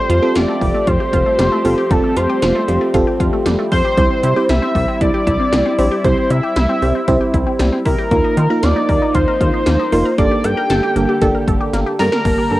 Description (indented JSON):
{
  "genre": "synth-pop",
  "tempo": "116 BPM",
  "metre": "4/4",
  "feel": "straight",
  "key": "G minor",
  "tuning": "A4 = 438 Hz",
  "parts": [
    { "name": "octave-doubled lead", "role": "melody", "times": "0.0-12.6 s", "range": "A4 to G5", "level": "-18 LUFS", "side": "equal", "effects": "chorus, cassette tape, analog delay" },
    { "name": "FM electric piano with tremolo", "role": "accompaniment", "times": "0.0-12.6 s", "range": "Bb3 to A5", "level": "-19 LUFS", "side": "right 2 dB", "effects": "cassette tape" },
    { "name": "phased analog pad", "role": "sustained chords", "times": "0.0-12.6 s", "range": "D3 to A4", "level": "-22 LUFS", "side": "equal", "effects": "phaser, chorus, cassette tape" },
    { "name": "resonant blip pluck", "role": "arpeggios", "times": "0.0-12.6 s", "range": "G3 to Bb4", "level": "-24 LUFS", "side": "equal", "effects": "phaser, cassette tape, analog delay" },
    { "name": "chorused synth bass", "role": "bass", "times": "0.1-12.6 s", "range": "F1 to Eb3", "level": "-18 LUFS", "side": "equal", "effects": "none" },
    { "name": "80s electronic pad drums", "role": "drums", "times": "0.1-12.4 s", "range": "crash cymbal, hi-hat, kick drum, snare drum", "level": "-20 LUFS", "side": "equal", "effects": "overdrive, cassette tape" }
  ],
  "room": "light reverb",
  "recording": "home recording on cassette",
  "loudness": "-13 LUFS",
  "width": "side -16 dB against mid",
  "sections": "0.0-12.3 A section",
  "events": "drum fill 11.7-12.3",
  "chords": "0.0 Fadd9; 4.0 C; 8.1 Ebsus2; 10.2 Gmadd9"
}